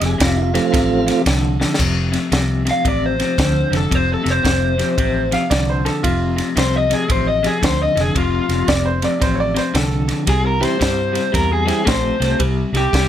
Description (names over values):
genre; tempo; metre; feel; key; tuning
electric blues shuffle; 113 BPM; 4/4; swing 64% on 8ths; F major; A4 = 440 Hz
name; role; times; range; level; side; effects
mellow tonewheel organ; accompaniment; 0.0-1.2, 10.6-11.8 s; E3 to Ab4; -19 LUFS; right 6 dB; slow rotary speaker
electric guitar through a small old amp; riff; 0.0-13.1 s; F2 to A3; -21 LUFS; left 3 dB; tremolo
vintage muted fingered electric bass; bass; 0.0-13.1 s; F1 to G2; -21 LUFS; equal; none
compact cocktail drum kit; drums; 0.0-13.1 s; crash cymbal, kick drum, ride cymbal, snare drum; -21 LUFS; equal; none
raw garage guitar; melody; 2.7-13.1 s; F4 to F5; -20 LUFS; left 1 dB; overdrive
bright upright piano; second line; 5.3-10.2 s; F4 to F5; -22 LUFS; right 3 dB; none
room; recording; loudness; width
light reverb; none; -15 LUFS; side -10 dB against mid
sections
0.0-1.8 A section; 1.8-13.1 B section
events
drum fill 1.5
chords
0.0 F; 10.3 C